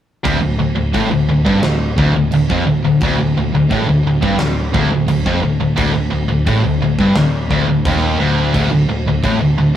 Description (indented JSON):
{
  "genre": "heavy metal",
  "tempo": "87 BPM",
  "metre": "4/4",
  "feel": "straight",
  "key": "D minor",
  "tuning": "A4 = 440 Hz",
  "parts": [
    { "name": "fuzz guitar", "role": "riff", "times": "0.2-9.8 s", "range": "D2 to A2", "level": "-17 LUFS", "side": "left 1 dB", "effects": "distortion" },
    { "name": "tight distorted guitar", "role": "riff", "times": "0.2-9.7 s", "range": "D2 to A2", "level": "-17 LUFS", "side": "equal", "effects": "distortion" },
    { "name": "overdriven picked electric bass", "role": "bass", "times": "0.3-9.7 s", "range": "D1 to A1", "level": "-21 LUFS", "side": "equal", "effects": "none" },
    { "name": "big rock drum kit", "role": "drums", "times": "0.3-9.4 s", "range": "crash cymbal, kick drum, snare drum", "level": "-22 LUFS", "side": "right 1 dB", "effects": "none" }
  ],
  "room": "light reverb",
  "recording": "rough rehearsal-room recording, tube saturation",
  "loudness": "-13 LUFS",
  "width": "side -10 dB against mid",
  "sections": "0.2-9.8 A section",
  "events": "none",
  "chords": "0.2 D5"
}